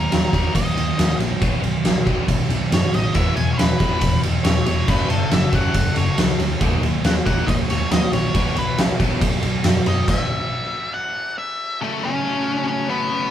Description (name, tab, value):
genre	quiet-loud alternative rock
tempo	138 BPM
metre	4/4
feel	straight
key	unclear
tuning	A4 = 442 Hz
part	octave-fuzz lead guitar	melody	0.0-13.3 s	A3 to G#5	-25 LUFS	equal	distortion
part	crunchy overdriven guitar	riff	0.0-13.3 s	E2 to D#4	-25 LUFS	left 4 dB	none
part	thick fuzz guitar	riff	0.0-10.1 s	F#2 to B3	-27 LUFS	right 6 dB	distortion
part	hollow-body short-scale picked electric bass	bass	0.0-10.0 s	E1 to F#2	-25 LUFS	equal	none
part	oversized low-tuned drum kit	drums	0.1-10.2 s	crash cymbal, kick drum, ride cymbal, snare drum	-20 LUFS	equal	none
part	rich studio string section	sustained chords	4.9-13.3 s	A#3 to A5	-35 LUFS	equal	none
room	moderate large studio reverb, RT60 1.3 s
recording	band playing live in one room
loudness	-17 LUFS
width	side -10 dB against mid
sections	0.0-11.8 A section; 11.8-13.3 B section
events	lead electric guitar solo 0.0-11.8; stop 10.1-11.8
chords	0.0 D#m; 1.4 B; 3.2 E; 4.9 F#m; 6.6 D#m; 8.4 B; 10.1 N.C.; 11.8 F#m